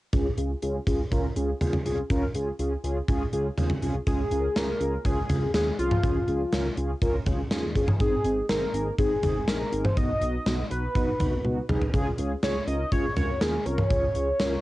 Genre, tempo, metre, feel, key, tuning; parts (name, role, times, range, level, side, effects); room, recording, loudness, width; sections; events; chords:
synth-pop; 122 BPM; 4/4; straight; Db major; A4 = 440 Hz
mellow synth brass; accompaniment; 0.1-14.5 s; Cb4 to Bb4; -30 LUFS; equal; chorus, low-pass filter
chorused synth bass; bass; 0.1-14.6 s; Gb1 to Eb2; -31 LUFS; equal
gated 80s drum kit; drums; 0.1-14.5 s; hi-hat, kick drum, snare drum, toms; -27 LUFS; equal; cassette tape
warm velvety synth lead; melody; 4.1-14.6 s; F4 to Eb5; -28 LUFS; equal; chorus, cassette tape
light reverb; home recording on cassette, nothing above 10.7 kHz; -24 LUFS; side -17 dB against mid
0.1-4.1 A section; 4.1-14.6 B section
filter sweep on analog polysynth 0.1-4.1; drum fill 11.4-11.9
0.1 Db; 8.0 Ab; 10.0 Cb; 11.9 Db